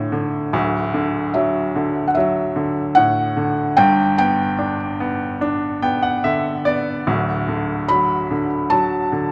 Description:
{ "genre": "pop", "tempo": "74 BPM", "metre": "4/4", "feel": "straight", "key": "D major", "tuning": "A4 = 440 Hz", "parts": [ { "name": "bright upright piano", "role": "accompaniment", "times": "0.0-9.3 s", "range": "D1 to G5", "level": "-22 LUFS", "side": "equal", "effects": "none" }, { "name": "felt-muted upright piano", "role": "melody", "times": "1.3-9.3 s", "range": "E5 to B5", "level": "-21 LUFS", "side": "equal", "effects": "none" } ], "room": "moderate lush hall reverb, RT60 2.5 s", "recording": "rough home demo mix", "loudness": "-19 LUFS", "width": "mono", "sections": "0.0-9.3 A section", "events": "upright piano fill 5.4-7.1", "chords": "0.0 Dm; 0.5 D; 3.8 G; 7.1 D" }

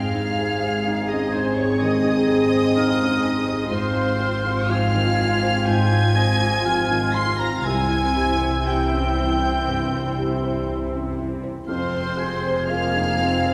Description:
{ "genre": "cinematic", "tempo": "58-63 BPM", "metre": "4/4", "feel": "rubato", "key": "F minor", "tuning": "A4 = 441 Hz", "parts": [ { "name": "warm studio violin section", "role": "melody", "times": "0.0-13.5 s", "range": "C6 to C7", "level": "-32 LUFS", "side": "equal", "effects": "none" }, { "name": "clear studio violin section", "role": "second line", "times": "0.0-13.5 s", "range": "C5 to C6", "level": "-33 LUFS", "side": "equal", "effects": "none" }, { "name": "concert flute", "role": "second line", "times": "0.0-13.5 s", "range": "C5 to C6", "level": "-30 LUFS", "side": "equal", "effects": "none" }, { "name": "warm oboe", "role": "second line", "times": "0.0-13.5 s", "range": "C5 to Ab5", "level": "-32 LUFS", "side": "equal", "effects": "none" }, { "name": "felt-muted upright piano", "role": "accompaniment", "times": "0.0-13.5 s", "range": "C2 to C5", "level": "-30 LUFS", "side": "equal", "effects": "none" }, { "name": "warm studio viola section", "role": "accompaniment", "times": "0.0-13.5 s", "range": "Bb3 to Ab4", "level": "-30 LUFS", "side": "equal", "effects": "none" }, { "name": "dark French horn section", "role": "sustained chords", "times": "0.0-13.5 s", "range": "E3 to C4", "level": "-29 LUFS", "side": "equal", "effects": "none" }, { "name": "warm studio cello section", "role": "bass", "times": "0.0-13.5 s", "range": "F2 to C3", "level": "-31 LUFS", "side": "equal", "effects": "none" }, { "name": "warm studio double bass section", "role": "bass", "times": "0.0-13.5 s", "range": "F1 to C2", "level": "-29 LUFS", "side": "equal", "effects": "none" } ], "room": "wet concert hall reverb, RT60 2.0 s", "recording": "heard from further back in the room", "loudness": "-21 LUFS", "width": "mono", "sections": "0.0-13.5 A section", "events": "none", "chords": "0.0 Ab; 3.7 Fm/Ab; 7.7 C; 11.7 Fm" }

